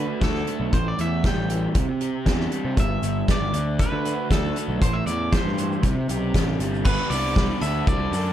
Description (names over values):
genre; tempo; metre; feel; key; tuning
indie rock; 118 BPM; 4/4; straight; D mixolydian; A4 = 441 Hz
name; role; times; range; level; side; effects
electric guitar at the edge of break-up; melody; 0.0-8.3 s; A4 to G5; -30 LUFS; right 1 dB; slapback echo
crunchy overdriven guitar; riff; 0.0-8.3 s; G2 to B4; -27 LUFS; right 1 dB; none
fuzz picked electric bass; bass; 0.0-8.3 s; G1 to D3; -26 LUFS; equal; overdrive
loose indie drum kit; drums; 0.2-8.2 s; crash cymbal, hi-hat, kick drum, snare drum; -23 LUFS; equal; none
tube shaker; percussion; 2.8-8.3 s; none; -42 LUFS; left 7 dB; none
glockenspiel with brass mallets; second line; 6.8-8.3 s; A5 to B5; -35 LUFS; left 1 dB; none
room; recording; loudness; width
studio reverb; dark, warm production; -20 LUFS; side -11 dB against mid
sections
0.0-6.9 A section; 6.9-8.3 B section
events
none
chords
0.0 D; 0.7 A5; 1.8 Cadd9; 2.8 G; 3.5 D; 4.8 Am7; 5.8 Csus2; 6.9 G; 7.6 D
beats
0.22 | 0.73 1.24 1.75 2.27 | 2.78 3.29 3.80 4.31 | 4.82 5.33 5.84 6.35 | 6.86 7.37 7.88